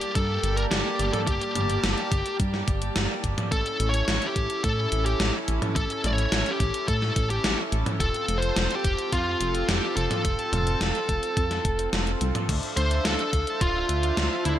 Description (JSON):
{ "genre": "synthwave", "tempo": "107 BPM", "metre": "4/4", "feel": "straight", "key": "unclear", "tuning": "A4 = 439 Hz", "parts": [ { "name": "high-gain lead guitar", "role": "melody", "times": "0.0-14.5 s", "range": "E4 to D5", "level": "-28 LUFS", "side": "left 1 dB", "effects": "distortion, tape echo" }, { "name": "soft supersaw", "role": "sustained chords", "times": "0.0-14.6 s", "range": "G3 to A5", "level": "-32 LUFS", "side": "right 1 dB", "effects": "sidechain pumping" }, { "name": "gated 80s digital drum machine", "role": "drums", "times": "0.0-14.6 s", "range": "crash cymbal, hi-hat, snare drum, toms", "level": "-29 LUFS", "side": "equal", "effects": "gated reverb, gated reverb snare" }, { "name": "chorused synth bass", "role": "bass", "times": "0.2-14.6 s", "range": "D1 to A2", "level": "-28 LUFS", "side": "equal", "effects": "sidechain pumping" }, { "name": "electronic kick drum", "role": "drums", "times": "0.2-13.7 s", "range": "none", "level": "-27 LUFS", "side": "equal", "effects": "none" } ], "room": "light reverb", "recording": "none", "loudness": "-23 LUFS", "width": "side -11 dB against mid", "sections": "0.0-14.6 A section", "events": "kick drops out 11.9-12.5", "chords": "0.0 Gmadd9; 3.5 A; 8.0 F; 12.5 Dm7" }